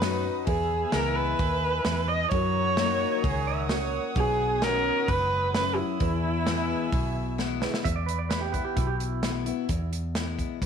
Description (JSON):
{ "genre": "honky-tonk and classic country", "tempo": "130 BPM", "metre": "4/4", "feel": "straight", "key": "E lydian", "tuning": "A4 = 442 Hz", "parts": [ { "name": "dark viola", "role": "melody", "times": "0.0-7.4 s", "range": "E4 to D#5", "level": "-27 LUFS", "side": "right 3 dB", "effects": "none" }, { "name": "dark concert grand piano", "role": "accompaniment", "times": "0.0-7.8 s", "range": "B3 to E5", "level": "-40 LUFS", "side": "right 13 dB", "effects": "none" }, { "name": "picked steel-string acoustic guitar", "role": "accompaniment", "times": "0.0-10.7 s", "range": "E2 to F#4", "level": "-32 LUFS", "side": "left 13 dB", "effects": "none" }, { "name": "warm chamber violin section", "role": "sustained chords", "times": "0.0-7.8 s", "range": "B4 to E6", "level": "-38 LUFS", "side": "right 1 dB", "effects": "none" }, { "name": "vintage muted fingered electric bass", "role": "bass", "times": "0.0-10.7 s", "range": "F#1 to F#2", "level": "-30 LUFS", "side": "equal", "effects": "none" }, { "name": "natural country drum kit", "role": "drums", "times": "0.0-10.7 s", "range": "hi-hat, kick drum, snare drum", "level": "-31 LUFS", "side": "right 1 dB", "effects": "none" }, { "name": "pedal steel guitar", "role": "second line", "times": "3.0-4.0, 7.8-9.9 s", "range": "E4 to E5", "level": "-33 LUFS", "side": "right 9 dB", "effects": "none" } ], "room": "light reverb, small room ambience", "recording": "1960s-style stereo with parts hard left and right", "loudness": "-24 LUFS", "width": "side -7 dB against mid", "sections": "0.0-7.8 A section; 7.8-10.7 B section", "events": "drum fill 7.4-7.8", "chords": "0.5 E; 2.3 F#6; 4.2 Badd9; 6.0 E", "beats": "0.01 | 0.47 0.93 1.39 1.85 | 2.31 2.78 3.24 3.70 | 4.16 4.62 5.08 5.54 | 6.00 6.46 6.92 7.38 | 7.84 8.30 8.77 9.23 | 9.69 10.15 10.61" }